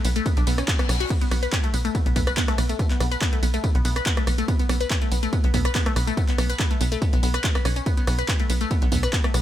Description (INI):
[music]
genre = driving peak-time techno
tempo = 142 BPM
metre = 4/4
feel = straight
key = unclear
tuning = A4 = 440 Hz
[part]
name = resonant blip pluck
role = riff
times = 0.0-9.4 s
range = A3 to B4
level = -27 LUFS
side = left 1 dB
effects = phaser, sidechain pumping, tape echo
[part]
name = tight sequencer bass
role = bass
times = 0.0-9.4 s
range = B1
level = -24 LUFS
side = equal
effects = tube saturation, sidechain pumping
[part]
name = punchy analog drum machine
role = drums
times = 0.0-9.4 s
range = crash cymbal, handclaps, hi-hat, ride cymbal, rim click, tambourine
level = -29 LUFS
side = equal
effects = sidechain pumping on hats, sidechain pumping on cymbals, sidechain pumping on perc
[part]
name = electronic kick drum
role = drums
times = 0.3-9.2 s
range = none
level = -23 LUFS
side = equal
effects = none
[part]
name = reverse cymbal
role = sound effects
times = 0.4-1.1 s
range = none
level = -36 LUFS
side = left 6 dB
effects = none
[sound]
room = digital ambience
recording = none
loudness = -20 LUFS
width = side -12 dB against mid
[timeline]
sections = 0.0-9.4 A section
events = reverse cymbal 0.4-1.1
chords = none